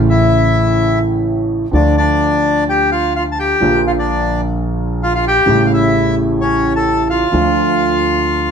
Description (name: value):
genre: tango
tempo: 128 BPM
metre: 4/4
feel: rubato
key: D minor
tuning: A4 = 441 Hz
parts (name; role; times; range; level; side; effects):
- warm concert grand piano; accompaniment; 0.0-8.5 s; A1 to F4; -15 LUFS; right 1 dB; none
- upright bass; bass; 0.0-8.5 s; A1 to D2; -21 LUFS; equal; none
- bandoneon; melody; 0.1-8.5 s; C#4 to A5; -15 LUFS; left 1 dB; none
room: moderate large studio reverb, RT60 1.1 s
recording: none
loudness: -12 LUFS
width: side -7 dB against mid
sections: 0.0-8.5 A section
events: none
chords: 0.0 A; 1.7 Dm; 3.6 Bb; 5.5 A7; 7.3 Dm